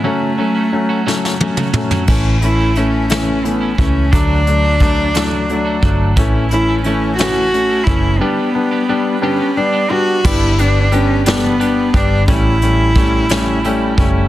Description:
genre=six-eight pop ballad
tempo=59 BPM (dotted quarters)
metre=6/8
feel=straight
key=unclear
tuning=A4 = 440 Hz
part: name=warm cello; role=melody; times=0.0-13.9 s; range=A3 to F#4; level=-18 LUFS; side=equal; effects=none
part: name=warm concert grand piano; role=accompaniment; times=0.0-14.2 s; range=E3 to D4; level=-18 LUFS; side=left 2 dB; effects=none
part: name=twelve-string electric guitar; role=arpeggios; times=0.0-14.3 s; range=F#2 to G4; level=-25 LUFS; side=right 6 dB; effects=digital delay
part: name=vintage brush drum kit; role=drums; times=1.1-14.1 s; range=crash cymbal, hi-hat, kick drum, snare drum, toms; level=-17 LUFS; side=equal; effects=soft clipping on snare
part: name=vintage muted fingered electric bass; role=bass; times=2.1-14.3 s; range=F#1 to D2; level=-17 LUFS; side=equal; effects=none
room=light reverb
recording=dense, heavily limited modern master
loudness=-12 LUFS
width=side -14 dB against mid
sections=0.0-2.1 A section; 2.1-10.2 B section; 10.2-14.3 C section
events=drum fill 1.1-2.1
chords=0.0 F#m; 2.1 A; 4.1 D; 6.2 A; 8.2 G; 12.3 A7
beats=| 0.04 1.06 | 2.08 3.10 | 4.12 5.14 | 6.17 7.19 | 8.21 9.22 | 10.24 11.26 | 12.28 13.30

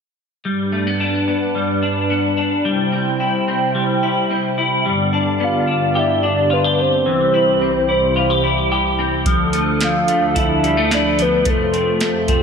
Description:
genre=dream pop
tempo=109 BPM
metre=4/4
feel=straight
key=unclear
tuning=A4 = 440 Hz
part: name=hollow soft pad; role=sustained chords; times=0.5-12.4 s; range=C2 to G5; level=-20 LUFS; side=right 2 dB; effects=chorus
part: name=semi-hollow electric guitar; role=arpeggios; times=0.5-12.4 s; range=E3 to G4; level=-19 LUFS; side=left 2 dB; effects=ensemble chorus, ping-pong delay
part: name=soft octave-layered synth lead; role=melody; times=5.4-12.4 s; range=A4 to F5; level=-18 LUFS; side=equal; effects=chorus, ping-pong delay
part: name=soft vintage rhythm box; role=drums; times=9.3-12.4 s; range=hi-hat, kick drum, snare drum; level=-21 LUFS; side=right 1 dB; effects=none
room=wet lush hall reverb, RT60 1.9 s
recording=none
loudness=-15 LUFS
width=side -6 dB against mid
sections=0.5-4.9 A section; 4.9-12.4 B section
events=none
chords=0.5 G; 2.7 C; 4.9 G; 7.1 C; 9.3 Dmadd9; 11.5 F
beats=| 0.46 1.00 1.56 2.11 | 2.66 3.21 3.76 4.31 | 4.86 5.41 5.96 6.51 | 7.06 7.61 8.16 8.71 | 9.26 9.81 10.36 10.91 | 11.46 12.01

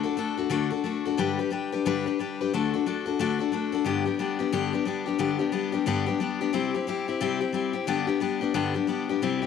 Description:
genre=rock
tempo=179 BPM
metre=4/4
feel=swing 61% on 8ths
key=G major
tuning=A4 = 440 Hz
part: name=picked steel-string acoustic guitar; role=solo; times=0.0-9.5 s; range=G2 to B4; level=-25 LUFS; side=left 7 dB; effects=none
room=light reverb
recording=none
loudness=-25 LUFS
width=side -6 dB against mid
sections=0.0-3.9 A section; 3.9-9.5 B section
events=none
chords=0.0 D; 1.2 G; 2.5 D; 3.9 G; 6.5 C; 7.9 G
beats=0.17 0.51 0.84 | 1.18 1.51 1.85 2.18 | 2.52 2.85 3.19 3.52 | 3.86 4.19 4.53 4.86 | 5.20 5.53 5.87 6.20 | 6.54 6.87 7.21 7.54 | 7.88 8.21 8.55 8.88 | 9.22

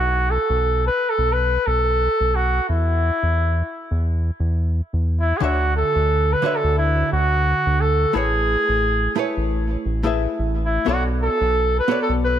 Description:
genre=sunset chillout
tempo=88 BPM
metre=4/4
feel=swing 58% on 16ths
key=A major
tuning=A4 = 441 Hz
part: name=warm flugelhorn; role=melody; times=0.0-12.4 s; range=E4 to B4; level=-20 LUFS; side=equal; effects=tape echo
part: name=round analog bass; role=bass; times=0.0-12.4 s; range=A1 to E2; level=-21 LUFS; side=equal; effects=none
part: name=archtop guitar, miked and amplified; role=accompaniment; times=5.4-12.4 s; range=D3 to E5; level=-24 LUFS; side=moving between left 5 dB and right 4 dB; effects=auto-pan, tape echo
room=light reverb, small room ambience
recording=none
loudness=-18 LUFS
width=side -10 dB against mid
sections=0.0-12.4 A section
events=none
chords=0.0 F#madd11/B; 2.7 N.C.; 5.4 Dmaj9; 8.1 Amaj9; 10.9 Bm9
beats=0.65 1.33 2.01 | 2.69 3.37 4.06 4.74 | 5.42 6.10 6.78 7.46 | 8.15 8.83 9.51 10.19 | 10.87 11.56 12.24

